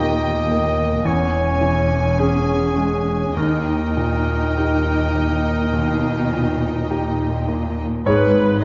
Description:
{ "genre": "classical, romantic movement for piano and orchestra", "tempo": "49-56 BPM", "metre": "4/4", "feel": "rubato", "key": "unclear", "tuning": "A4 = 440 Hz", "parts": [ { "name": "clear grand piano", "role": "melody", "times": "0.0-8.6 s", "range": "D#2 to C#5", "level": "-24 LUFS", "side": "equal", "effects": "none" }, { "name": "warm studio violin section", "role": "melody", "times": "0.0-8.6 s", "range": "D#5 to G#5", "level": "-34 LUFS", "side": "equal", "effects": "none" }, { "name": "clear studio violin section", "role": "second line", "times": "0.0-7.8 s", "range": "D#5 to G#5", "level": "-36 LUFS", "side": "equal", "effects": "none" }, { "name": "warm clarinet", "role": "second line", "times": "0.0-7.5 s", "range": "G#4 to D#5", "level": "-27 LUFS", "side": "equal", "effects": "none" }, { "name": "dark studio viola section", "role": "accompaniment", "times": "0.0-8.6 s", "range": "A#3 to B4", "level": "-27 LUFS", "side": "equal", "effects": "none" }, { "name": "warm studio cello section", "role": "bass", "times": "0.0-8.6 s", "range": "D#2 to B2", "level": "-28 LUFS", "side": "equal", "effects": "none" }, { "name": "warm studio double bass section", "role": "bass", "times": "0.0-8.6 s", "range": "E1 to D#2", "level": "-27 LUFS", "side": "equal", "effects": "none" } ], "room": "moderate scoring stage reverb, RT60 1.6 s", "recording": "dark, warm production, nothing above 7.5 kHz", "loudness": "-19 LUFS", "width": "mono", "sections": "0.0-8.1 A section", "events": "none", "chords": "0.0 D#; 1.1 C#m/E; 3.4 D#; 8.1 G#m" }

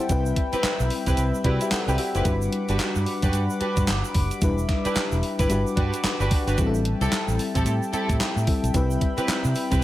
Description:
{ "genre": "R&B, new jack swing", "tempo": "111 BPM", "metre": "4/4", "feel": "swing 61% on 16ths", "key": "A dorian", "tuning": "A4 = 440 Hz", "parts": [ { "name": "FM electric piano with tremolo", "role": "accompaniment", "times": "0.0-9.8 s", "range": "G3 to G5", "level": "-28 LUFS", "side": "left 4 dB", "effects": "none" }, { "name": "chorused pulse-width pad", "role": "sustained chords", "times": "0.0-9.8 s", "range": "G3 to D6", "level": "-32 LUFS", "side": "equal", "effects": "none" }, { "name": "vintage muted fingered electric bass", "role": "bass", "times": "0.1-9.8 s", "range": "E1 to C3", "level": "-25 LUFS", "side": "equal", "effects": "none" }, { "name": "gated 80s digital drum machine", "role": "drums", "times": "0.1-9.8 s", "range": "handclaps, hi-hat, kick drum, snare drum", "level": "-25 LUFS", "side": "equal", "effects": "gated reverb, gated reverb snare" }, { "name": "tube shaker", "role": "percussion", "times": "0.1-9.8 s", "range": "none", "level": "-41 LUFS", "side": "right 6 dB", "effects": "none" }, { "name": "dark studio string section", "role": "stabs", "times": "0.5-9.8 s", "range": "C4 to B4", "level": "-29 LUFS", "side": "right 2 dB", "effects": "digital delay" } ], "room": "little or no reverb", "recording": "none", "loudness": "-21 LUFS", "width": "side -15 dB against mid", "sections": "0.0-6.6 A section; 6.6-9.8 B section", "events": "none", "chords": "0.1 Cmaj7; 2.3 Gmaj7; 4.4 Em7; 5.5 Gmaj7; 6.6 Am7; 8.7 Cmaj7" }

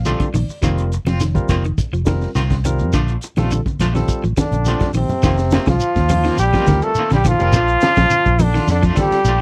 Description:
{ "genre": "afrobeat", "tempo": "104 BPM", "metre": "4/4", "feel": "straight", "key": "F mixolydian", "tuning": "A4 = 441 Hz", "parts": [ { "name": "barky tine electric piano", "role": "accompaniment", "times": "0.0-9.2 s", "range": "G3 to D5", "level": "-28 LUFS", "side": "equal", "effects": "none" }, { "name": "fingered electric bass", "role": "bass", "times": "0.0-9.4 s", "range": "F1 to F2", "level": "-21 LUFS", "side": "equal", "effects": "none" }, { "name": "electric guitar at the edge of break-up", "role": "stabs", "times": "0.1-9.4 s", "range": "Eb3 to F4", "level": "-28 LUFS", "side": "equal", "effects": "tremolo" }, { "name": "crunchy breakbeat drum kit", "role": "drums", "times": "0.1-9.4 s", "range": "hi-hat, kick drum, ride cymbal, snare drum", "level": "-24 LUFS", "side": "equal", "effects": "none" }, { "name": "congas", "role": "percussion", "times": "0.1-9.1 s", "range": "none", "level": "-26 LUFS", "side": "equal", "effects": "none" }, { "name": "shekere", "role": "percussion", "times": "0.1-9.4 s", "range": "none", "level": "-27 LUFS", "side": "equal", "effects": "none" }, { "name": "clean electric guitar", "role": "arpeggios", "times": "0.2-9.1 s", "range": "D3 to F3", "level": "-26 LUFS", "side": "equal", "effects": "none" }, { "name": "brilliant trombone", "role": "melody", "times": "4.4-9.4 s", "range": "C4 to A4", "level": "-20 LUFS", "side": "equal", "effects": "none" }, { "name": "brilliant trombone", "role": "second line", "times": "4.4-9.4 s", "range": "C3 to A3", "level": "-28 LUFS", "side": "equal", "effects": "none" } ], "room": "little or no reverb", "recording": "dry, close 1970s-style studio recording", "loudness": "-17 LUFS", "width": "mono", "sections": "0.0-5.2 A section; 5.2-9.4 B section", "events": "tine electric piano fill 0.0-0.6; drum fill 4.5-5.2", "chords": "0.0 Bbmaj7; 0.6 F7sus4; 2.9 Bbmaj7; 5.2 F7sus4; 7.5 Bbmaj7" }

